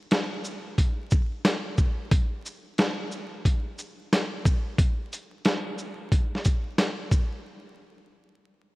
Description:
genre	hip hop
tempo	90 BPM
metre	4/4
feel	swing 65% on 16ths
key	none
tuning	none
part	dusty soul sampler-style drum kit	drums	0.1-7.3 s	hi-hat, kick drum, shaker, snare drum	-24 LUFS	equal	none
room	moderate plate reverb, RT60 2.8 s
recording	dry, gritty hardware recording, vinyl crackle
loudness	-24 LUFS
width	side -21 dB against mid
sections	0.0-7.4 A section; 7.4-8.8 B section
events	none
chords	none

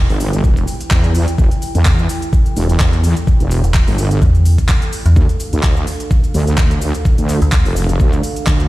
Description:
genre	bass house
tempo	127 BPM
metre	4/4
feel	swing 55% on 16ths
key	E phrygian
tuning	A4 = 444 Hz
part	dark analog pad	sustained chords	0.0-8.7 s	D4 to G5	-27 LUFS	right 2 dB	chorus, sidechain pumping
part	metallic FM bass	bass	0.0-0.1, 3.6-7.6 s	E1 to E2	-12 LUFS	equal	sidechain pumping
part	wobble bass	bass	0.1-8.7 s	E1 to E2	-15 LUFS	equal	chorus, tube saturation, sidechain pumping
part	garage drum kit	drums	0.1-8.7 s	cabasa, handclaps, hi-hat	-24 LUFS	equal	none
part	electronic kick drum	drums	0.4-8.6 s	none	-13 LUFS	equal	none
room	digital ambience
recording	played on a big sound system in a bare room, stone room reverb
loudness	-12 LUFS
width	side -18 dB against mid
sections	0.0-8.7 A section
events	none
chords	0.0 Em; 5.2 Dm

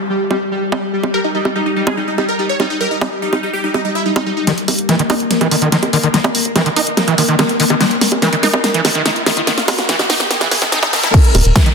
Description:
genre	psychedelic trance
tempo	144 BPM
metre	4/4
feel	straight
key	Eb major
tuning	A4 = 439 Hz
part	pulsing gated texture	sustained chords	0.0-11.1 s	G3 to Bb4	-20 LUFS	left 2 dB	chorus, built-in reverb, sidechain pumping
part	downlifter and riser	sound effects	0.0-1.1, 6.1-11.1 s	none	-24 LUFS	right 1 dB	none
part	big-room dance drum kit	drums	0.3-11.7 s	bongos, crash cymbal, hi-hat, snare drum	-16 LUFS	right 1 dB	none
part	supersaw stab	melody	1.1-4.4 s	Eb4 to Db5	-19 LUFS	right 1 dB	phaser, sidechain pumping, digital delay
part	screaming distorted acid line	riff	4.5-11.7 s	Eb3 to Fb4	-17 LUFS	moving between left 5 dB and right 4 dB	distortion, chorus, auto-pan, sidechain pumping, dub echo
part	tight sequencer bass	bass	4.7-11.5 s	Eb1 to Eb2	-19 LUFS	equal	none
part	electronic kick drum	drums	11.1-11.6 s	none	-9 LUFS	equal	none
room	moderate digital room reverb, RT60 1.0 s, digital ambience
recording	dense, heavily limited modern master, high-pass filter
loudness	-13 LUFS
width	side -5 dB against mid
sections	0.0-4.5 A section; 4.5-11.1 B section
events	build-up 4.5-11.1; drum fill 4.5-11.1; filter sweep on acid bass 4.5-11.1; filter sweep 4.5-11.1; riser 6.1-11.1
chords	0.0 N.C.; 4.5 Eb5

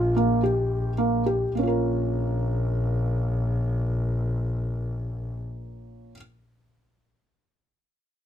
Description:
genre	contemporary instrumental, chamber music in an uneven meter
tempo	free time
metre	none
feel	none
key	Bb dorian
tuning	A4 = 441 Hz
part	felt-muted upright piano	arpeggios	0.0-6.2 s	Bb3 to Bb4	-26 LUFS	right 1 dB	none
part	clear double bass	bass	0.0-5.4 s	Bb1	-26 LUFS	left 1 dB	none
room	little or no reverb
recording	close, detailed microphones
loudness	-23 LUFS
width	side -10 dB against mid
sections	0.0-1.5 A section; 1.5-4.6 B section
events	slowing down 0.0-1.5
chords	0.0 Eb/Bb (rootless); 1.5 Bbm

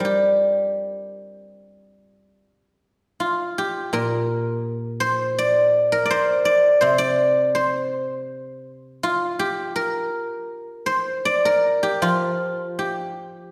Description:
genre	chinese traditional, Chinese solo plucked strings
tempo	81 BPM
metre	4/4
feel	uneven beats, rubato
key	G yu mode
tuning	A4 = 441 Hz
part	guzheng	solo	0.0-13.5 s	Bb2 to D5	-22 LUFS	equal	none
room	wet scoring stage reverb, RT60 1.5 s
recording	heard from further back in the room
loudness	-21 LUFS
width	mono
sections	0.0-13.5 A section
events	none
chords	none

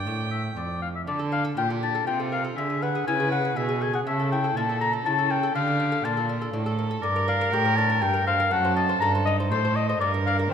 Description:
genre	classical, baroque-style sonata movement with continuo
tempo	121 BPM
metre	3/4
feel	straight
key	G minor from 7.0 s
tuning	A4 = 438 Hz
part	warm oboe	melody	0.0-10.5 s	C5 to Bb5	-26 LUFS	left 5 dB	none
part	dark violin	second line	0.0-10.5 s	F4 to G5	-30 LUFS	right 5 dB	none
part	lute	accompaniment	0.0-10.5 s	F2 to D#5	-32 LUFS	left 1 dB	none
part	rich cello	bass	0.0-10.5 s	F2 to Eb3	-27 LUFS	right 2 dB	none
room	moderate concert hall reverb, RT60 2.1 s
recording	minimal, uncompressed stereo recording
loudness	-22 LUFS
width	side -8 dB against mid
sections	0.0-1.1 A section; 1.1-10.5 A section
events	none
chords	0.0 Gm; 1.1 Dm; 2.6 E7; 4.1 A; 5.6 Dm; 7.0 Gm; 8.5 F#dim7; 10.0 Gm

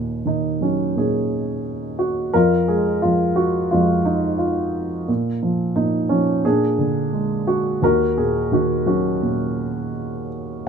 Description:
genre	classical, lyrical solo piano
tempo	87 BPM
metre	4/4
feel	rubato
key	Eb minor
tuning	A4 = 440 Hz
part	dark upright piano	solo	0.0-10.7 s	Eb2 to Bb4	-18 LUFS	right 1 dB	none
room	light reverb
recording	close, detailed microphones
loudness	-18 LUFS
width	side -6 dB against mid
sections	0.0-10.7 A section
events	none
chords	0.0 Ebm7; 2.3 Fmadd11; 5.1 Bb5; 6.4 Bb7; 7.8 Ebm7

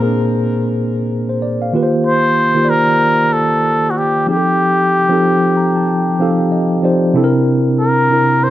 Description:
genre	R&B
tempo	94 BPM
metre	4/4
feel	swing 60% on 16ths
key	unclear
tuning	A4 = 440 Hz
part	mellow tine electric piano	accompaniment	0.0-8.5 s	Bb2 to Bb5	-14 LUFS	equal	fast stereo tremolo
part	trumpet with cup mute	melody	2.1-8.5 s	F#4 to C5	-15 LUFS	left 1 dB	none
room	moderate studio reverb, RT60 0.8 s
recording	none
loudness	-12 LUFS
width	side -13 dB against mid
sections	0.0-7.2 A section; 7.2-8.5 B section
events	tine electric piano fill 5.2-7.2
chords	0.0 Bb9; 1.7 Eb69; 4.3 F9; 7.2 C9

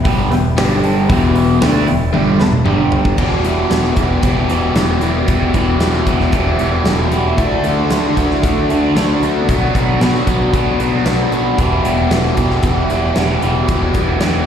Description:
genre	classic rock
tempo	114 BPM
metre	4/4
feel	straight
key	E minor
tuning	A4 = 440 Hz
part	dark upright piano	accompaniment	0.0-3.1 s	G4 to A5	-24 LUFS	equal	slapback echo
part	growling picked electric bass	bass	0.0-14.4 s	E1 to B2	-19 LUFS	equal	overdrive
part	overdriven electric guitar	riff	0.1-14.5 s	E2 to G4	-17 LUFS	left 8 dB	slapback echo
part	overdriven electric guitar	riff	0.1-14.5 s	E2 to D4	-18 LUFS	right 9 dB	phaser, slapback echo
part	big rock drum kit	drums	0.1-14.3 s	crash cymbal, hi-hat, kick drum, snare drum, toms	-19 LUFS	equal	none
part	electric slide guitar	second line	7.4-9.5 s	D4 to A4	-22 LUFS	left 1 dB	analog delay, slapback echo
room	small room ambience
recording	live gig heard through the venue's PA, recital hall reverb, lossy compression artefacts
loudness	-12 LUFS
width	side -8 dB against mid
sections	0.0-3.2 A section; 3.2-14.5 B section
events	drum fill 2.1-3.2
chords	0.0 Em; 0.6 G5; 1.1 Em; 2.7 G5; 3.2 Em; 7.4 D; 9.5 Bm; 11.6 Em

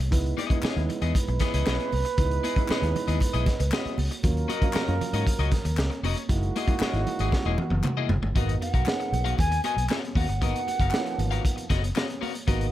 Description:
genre	funk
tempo	116 BPM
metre	4/4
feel	straight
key	G# minor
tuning	A4 = 440 Hz
part	electric guitar at the edge of break-up	accompaniment	0.0-12.7 s	A#3 to E#5	-33 LUFS	left 10 dB	wide subtle chorus
part	vintage muted fingered electric bass	bass	0.0-12.7 s	E1 to G#2	-27 LUFS	equal	none
part	crunchy breakbeat drum kit	drums	0.0-12.7 s	hi-hat, kick drum, snare drum, toms	-27 LUFS	equal	none
part	dark upright piano	stabs	0.1-12.7 s	E#3 to D#5	-33 LUFS	right 4 dB	none
part	congas	percussion	0.4-12.6 s	none	-39 LUFS	right 8 dB	none
part	group handclap	percussion	0.6-12.1 s	none	-37 LUFS	left 6 dB	none
part	clear trombone	second line	1.1-8.1 s	F#4 to B4	-32 LUFS	right 6 dB	none
part	mellow hollow jazz flute	melody	8.4-11.7 s	D#5 to G#5	-30 LUFS	right 1 dB	none
room	little or no reverb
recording	none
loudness	-23 LUFS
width	side -13 dB against mid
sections	0.0-8.4 A section; 8.4-12.7 B section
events	upright piano fill 3.2-4.2; drum fill 7.3-8.4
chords	0.1 C#m9; 4.2 D#m7; 6.3 F#13; 8.4 G#m9

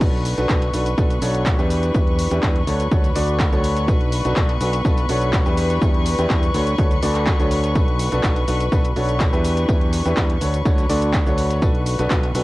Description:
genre	piano house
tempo	124 BPM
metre	4/4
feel	straight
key	B minor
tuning	A4 = 440 Hz
part	rich chamber violin section	sustained chords	0.0-12.4 s	B4 to C#6	-27 LUFS	left 3 dB	sidechain pumping, cassette tape
part	clear upright piano	riff	0.0-12.4 s	D4 to D5	-24 LUFS	equal	sidechain pumping, cassette tape, analog delay
part	modern bright fingered electric bass	bass	0.0-12.4 s	B1 to E2	-22 LUFS	equal	sidechain pumping
part	dusty soul sampler-style drum kit	drums	0.0-12.4 s	hi-hat, snare drum, tambourine	-40 LUFS	equal	none
part	electronic kick drum	drums	0.0-12.2 s	none	-19 LUFS	equal	cassette tape
part	house drum kit	drums	0.0-12.4 s	crash cymbal, handclaps, hi-hat, shaker	-29 LUFS	equal	overdrive, cassette tape
room	little or no reverb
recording	home recording on cassette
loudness	-16 LUFS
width	side -18 dB against mid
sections	0.0-12.4 A section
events	none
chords	0.0 Bm7; 1.7 Em7; 2.7 Dmaj7; 3.9 Bm7; 5.6 Em7; 6.5 Dmaj7; 7.8 Bm7; 9.4 Em7; 10.4 Dmaj7; 11.6 Bm7

